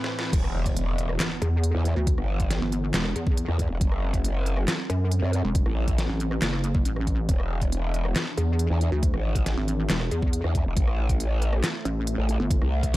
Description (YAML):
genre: heavy wobble dubstep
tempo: 138 BPM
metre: 4/4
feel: half-time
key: E minor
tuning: A4 = 442 Hz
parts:
  - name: lush unison pad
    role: sustained chords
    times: 0.0-13.0 s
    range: A2 to F#5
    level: -35 LUFS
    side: right 1 dB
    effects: chorus, sidechain pumping
  - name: dubstep drum kit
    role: drums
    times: 0.0-13.0 s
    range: crash cymbal, handclaps, hi-hat, rim click, snare drum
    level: -30 LUFS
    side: equal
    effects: high-pass filter on snare, high-pass filter on hats, high-pass filter on cymbals
  - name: growl bass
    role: bass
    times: 0.3-13.0 s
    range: E1 to F#2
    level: -25 LUFS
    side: equal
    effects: chorus, overdrive
  - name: electronic kick drum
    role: drums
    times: 0.3-12.9 s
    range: none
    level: -25 LUFS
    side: equal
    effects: overdrive
  - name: impact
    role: sound effects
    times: 0.3-2.1 s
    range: none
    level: -35 LUFS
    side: equal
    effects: none
  - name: pulsing pluck wobble bass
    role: bass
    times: 1.4-12.6 s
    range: E1 to F#2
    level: -25 LUFS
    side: equal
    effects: chorus, overdrive
room: digital ambience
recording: dark, warm production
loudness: -23 LUFS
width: side -17 dB against mid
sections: 0.3-13.0 A section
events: break 0.0-0.3; drum fill 0.0-0.3; drop 0.3-13.0; impact 0.3-2.1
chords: 0.3 Emadd9; 3.8 F#dim; 7.3 E7; 10.8 Am